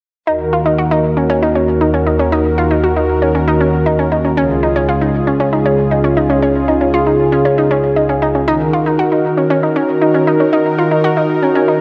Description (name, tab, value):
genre	pop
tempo	117 BPM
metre	4/4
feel	straight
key	unclear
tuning	A4 = 440 Hz
part	warm analog pad	sustained chords	0.3-11.8 s	C#2 to A#4	-16 LUFS	equal	chorus
part	analog pluck	arpeggios	0.3-11.8 s	C#4 to F#4	-18 LUFS	equal	chorus, digital delay
room	wet lush hall reverb, RT60 1.7 s, digital ambience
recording	none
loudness	-14 LUFS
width	mono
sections	0.3-8.5 A section; 8.5-11.8 B section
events	none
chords	0.3 D#m; 4.4 C#; 8.5 D#m